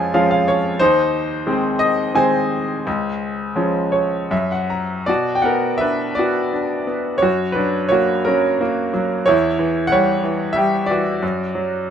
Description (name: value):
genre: classical, lyrical solo piano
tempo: 76-94 BPM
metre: 3/4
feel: rubato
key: B harmonic minor from 5.1 s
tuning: A4 = 440 Hz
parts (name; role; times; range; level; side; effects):
- bright grand piano; solo; 0.0-11.9 s; C#2 to A#5; -16 LUFS; equal; none
room: light reverb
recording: minimal, uncompressed stereo recording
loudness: -16 LUFS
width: side -8 dB against mid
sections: 0.0-5.1 A section; 5.1-11.9 B section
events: grand piano fill 0.0-0.8, 3.6-5.1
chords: 0.0 C#/E#; 0.8 G#/D#; 2.9 C#; 4.3 N.C.; 5.1 Bm; 7.2 F#; 9.3 C#dim/E; 11.2 D/F#